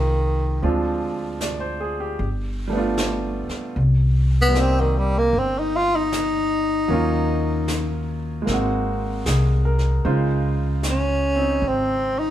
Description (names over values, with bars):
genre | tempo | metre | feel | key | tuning
jazz ballad | 76 BPM | 4/4 | swing 66% on 8ths | unclear | A4 = 440 Hz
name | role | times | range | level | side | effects
breathy tenor saxophone | melody | 0.0-12.3 s | Eb3 to F4 | -21 LUFS | equal | none
bright grand piano | accompaniment | 0.0-12.3 s | Db3 to D5 | -26 LUFS | right 2 dB | none
upright bass | bass | 0.0-12.3 s | G1 to Eb2 | -22 LUFS | equal | none
jazz brush drum kit | drums | 0.6-12.3 s | brushed snare drum, hi-hat, snare drum | -31 LUFS | equal | none
room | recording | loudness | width
moderate studio reverb, RT60 0.7 s | band playing live in one room | -19 LUFS | side -12 dB against mid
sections
0.0-12.3 A section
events
tenor saxophone solo 0.0-12.3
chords
0.0 Fm9; 0.6 Dm7b5; 2.2 G7; 3.8 Cm7; 6.9 Ebm7; 8.5 Ab9; 10.0 Dbmaj9